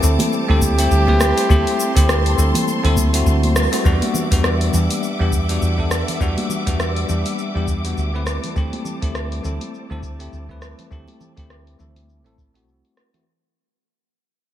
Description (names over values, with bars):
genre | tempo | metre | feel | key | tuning
sunset chillout | 102 BPM | 4/4 | swing 57% on 16ths | unclear | A4 = 443 Hz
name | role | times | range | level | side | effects
mellow flugelhorn | melody | 0.0-3.2 s | G4 | -22 LUFS | equal | digital delay
bell-like tine electric piano | accompaniment | 0.0-13.2 s | G3 to B4 | -24 LUFS | left 1 dB | auto-pan, digital delay
clear symphonic string section | sustained chords | 0.0-13.2 s | G3 to D6 | -27 LUFS | left 2 dB | low-pass filter
woody fretless electric bass | bass | 0.0-12.8 s | A1 to E2 | -19 LUFS | equal | none
deep house drum kit | drums | 0.0-13.2 s | hi-hat, rim click, shaker | -24 LUFS | equal | low-pass filter on perc, low-pass filter on hats, low-pass filter on snare, low-pass filter on room, gated reverb
congas | percussion | 0.2-13.2 s | none | -27 LUFS | equal | none
electronic kick drum | drums | 0.6-12.5 s | none | -20 LUFS | equal | none
room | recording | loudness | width
light reverb | bright 1980s-style digital production | -16 LUFS | side -11 dB against mid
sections
0.0-3.9 A section; 3.9-13.3 B section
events
band accent 3.6; fade-out 3.9-13.3; filter sweep on string section 3.9-13.3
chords
0.0 D7sus4